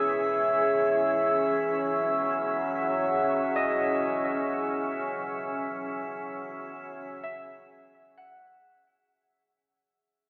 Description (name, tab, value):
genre	ambient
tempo	free time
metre	none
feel	none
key	C# minor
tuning	A4 = 440 Hz
part	glassy FM pad	sustained chords	0.0-9.1 s	B2 to G#4	-32 LUFS	equal	ensemble chorus, built-in reverb
part	Celtic harp	arpeggios	0.0-9.8 s	G#4 to F#5	-37 LUFS	equal	analog delay
part	drifting glass-harmonics texture	texture	0.0-9.1 s	E5	-31 LUFS	equal	chorus, built-in reverb
part	organ-like drone	drone	4.1-9.2 s	C#3	-41 LUFS	equal	ensemble chorus, built-in reverb
room	wet lush hall reverb, RT60 3.0 s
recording	dreamy mix soaked in reverb, cassette tape, telephone sound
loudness	-27 LUFS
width	mono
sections	0.0-9.1 A section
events	fade-in on harp 0.0-9.1; fade-out 4.2-9.1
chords	0.0 C#m7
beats	free time